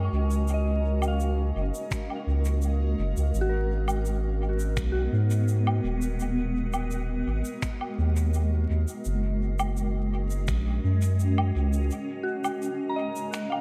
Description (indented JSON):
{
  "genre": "ambient dub",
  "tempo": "84 BPM",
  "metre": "4/4",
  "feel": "straight",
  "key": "unclear",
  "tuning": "A4 = 444 Hz",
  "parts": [
    { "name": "granular cloud pad", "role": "sustained chords", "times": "0.0-13.6 s", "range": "G#3 to D#5", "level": "-34 LUFS", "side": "equal", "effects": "built-in reverb" },
    { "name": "soft synth bell", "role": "arpeggios", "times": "0.0-13.6 s", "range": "F#4 to C#6", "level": "-37 LUFS", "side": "equal", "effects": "chorus, dub echo" },
    { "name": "soft dub sub bass", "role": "bass", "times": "0.0-11.9 s", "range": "D#1 to G#2", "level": "-28 LUFS", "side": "equal", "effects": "none" },
    { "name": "shaker, woodblock and finger snaps", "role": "drums", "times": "0.3-13.6 s", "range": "none", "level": "-39 LUFS", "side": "equal", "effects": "dub echo" },
    { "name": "electronic kick drum", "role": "drums", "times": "1.9-10.6 s", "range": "none", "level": "-34 LUFS", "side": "equal", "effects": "none" }
  ],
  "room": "light reverb, studio reverb",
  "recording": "vinyl crackle",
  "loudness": "-27 LUFS",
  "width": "mono",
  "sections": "0.0-13.6 A section",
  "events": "break 11.9-13.6",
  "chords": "0.0 F#69; 3.3 G#m9; 9.1 F#69"
}